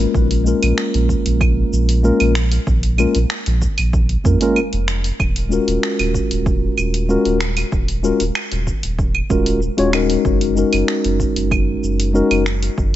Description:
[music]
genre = sunset chillout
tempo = 95 BPM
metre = 4/4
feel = straight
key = unclear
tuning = A4 = 440 Hz
[part]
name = mellow tine electric piano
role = accompaniment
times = 0.0-12.4 s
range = G#3 to C#5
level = -18 LUFS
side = moving between left 5 dB and right 5 dB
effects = auto-pan, ping-pong delay
[part]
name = warm sub bass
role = bass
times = 0.0-13.0 s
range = D#1 to E#2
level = -18 LUFS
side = equal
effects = none
[part]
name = deep house drum kit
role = drums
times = 0.0-12.9 s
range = claves, finger snaps, hi-hat, shaker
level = -24 LUFS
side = right 2 dB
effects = none
[part]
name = electronic kick drum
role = drums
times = 0.1-12.9 s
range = none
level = -21 LUFS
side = equal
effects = none
[sound]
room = light reverb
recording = nothing above 7.9 kHz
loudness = -15 LUFS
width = side -13 dB against mid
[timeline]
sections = 0.0-13.0 A section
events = none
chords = 0.1 A#m7; 5.2 D#m11; 10.3 F#69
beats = | 0.14 0.78 1.41 2.04 | 2.67 3.30 3.94 4.57 | 5.20 5.83 6.46 7.09 | 7.72 8.36 8.99 9.62 | 10.25 10.88 11.51 12.14 | 12.78

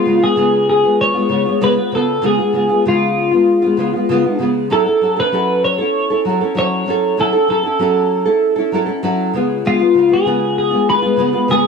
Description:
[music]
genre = indie pop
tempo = 97 BPM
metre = 4/4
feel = straight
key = F# minor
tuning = A4 = 439 Hz
[part]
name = twelve-string electric guitar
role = melody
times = 0.0-11.7 s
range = E#4 to C#5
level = -15 LUFS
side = left 1 dB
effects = lush chorus, slapback echo
[part]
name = nylon-string guitar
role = accompaniment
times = 0.0-11.7 s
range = C#3 to A4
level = -16 LUFS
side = equal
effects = wide subtle chorus, warbly pitch drift
[sound]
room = moderate spring reverb, RT60 1.5 s, small room ambience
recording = dark, warm production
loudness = -13 LUFS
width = side -5 dB against mid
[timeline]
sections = 0.0-11.7 A section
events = none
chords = 0.0 C#7; 4.7 F#m7; 9.3 C#7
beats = 0.37 0.99 1.61 | 2.23 2.84 3.46 4.08 | 4.70 5.32 5.94 6.56 | 7.18 7.79 8.41 9.03 | 9.65 10.27 10.89 11.50

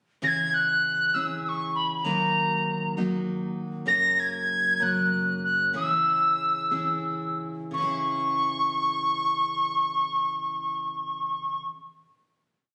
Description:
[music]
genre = acoustic folk duo or small band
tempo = 57-66 BPM (dotted quarters)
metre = 6/8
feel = straight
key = C# dorian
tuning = A4 = 437 Hz
[part]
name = mellow tin whistle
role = melody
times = 0.2-11.6 s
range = A#5 to A#6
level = -26 LUFS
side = equal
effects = none
[part]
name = picked steel-string acoustic guitar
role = accompaniment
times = 0.2-11.8 s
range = F#2 to A#4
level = -34 LUFS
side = equal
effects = none
[sound]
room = light reverb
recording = recorded on a phone in the room, studio reverb, compression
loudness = -26 LUFS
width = mono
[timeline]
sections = 0.2-7.7 A section; 7.7-11.9 final chord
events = slowing down 3.9-7.7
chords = 0.2 C#m; 2.1 D#m; 3.9 F#; 5.7 C#m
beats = | 0.22 1.14 | 2.05 2.96 | 3.88 4.80 | 5.74 6.72 | 7.74 8.78 | 9.83 10.87

